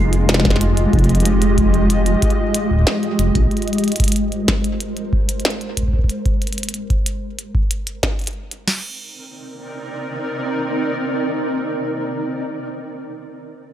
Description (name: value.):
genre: IDM.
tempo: 93 BPM.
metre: 4/4.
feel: straight.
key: C minor.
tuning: A4 = 441 Hz.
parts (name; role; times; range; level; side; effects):
granular cloud pad; sustained chords; 0.0-12.0 s; Ab3 to Eb5; -21 LUFS; equal; built-in reverb, vintage 12-bit sampler grit.
dark detuned saw bass; bass; 0.0-3.5 s; F1 to Bb1; -16 LUFS; equal; none.
flickering grainy texture; texture; 0.0-0.9 s; Ab3; -30 LUFS; right 2 dB; none.
glitchy drum kit; drums; 0.1-8.6 s; hi-hat, snare drum; -21 LUFS; equal; overdrive.
booming analog drum machine; drums; 0.5-8.8 s; crash cymbal, kick drum, snare drum; -20 LUFS; equal; none.
room: little or no reverb.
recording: dry, gritty hardware recording.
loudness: -16 LUFS.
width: side -11 dB against mid.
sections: 0.0-8.7 A section; 8.7-11.3 B section.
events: filter sweep on ambient pad 0.0-6.1.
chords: 0.0 Fm9; 3.5 Abmaj9; 8.7 Cm9.